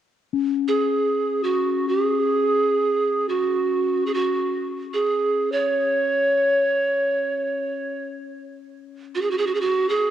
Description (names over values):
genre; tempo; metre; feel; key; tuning
world meditative, free-time meditation music; free time; none; none; unclear; A4 = 440 Hz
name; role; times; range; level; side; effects
bronze singing bowl; texture; 0.3-8.3 s; C#4; -29 LUFS; left 12 dB; stereo widening, cassette tape
breathy pan flute; melody; 0.7-10.1 s; F#4 to C#5; -20 LUFS; right 2 dB; none
room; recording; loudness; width
wet spring reverb, RT60 2.7 s; home recording on cassette; -20 LUFS; side -10 dB against mid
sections
0.0-10.1 A section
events
none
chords
none